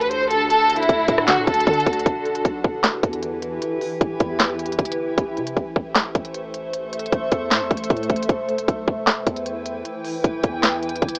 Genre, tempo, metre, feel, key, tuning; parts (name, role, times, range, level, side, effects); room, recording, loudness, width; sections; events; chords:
hip hop, trap; 154 BPM; 4/4; half-time; E minor; A4 = 440 Hz
rich studio violin section; melody; 0.0-2.0 s; E4 to C5; -22 LUFS; equal; cassette tape, analog delay
granular cloud pad; sustained chords; 0.0-11.2 s; D3 to G5; -28 LUFS; equal; built-in reverb, cassette tape
long sustained 808-style bass; bass; 0.0-11.2 s; D1 to D3; -35 LUFS; equal
trap drum kit; drums; 0.0-11.2 s; handclaps, hi-hat, kick drum, rim click, snare drum; -22 LUFS; equal
light reverb; home recording on cassette, AM radio sound; -22 LUFS; mono
0.0-2.1 A section; 2.1-11.2 B section
0.0 D; 2.1 Em; 5.2 Am; 8.3 Em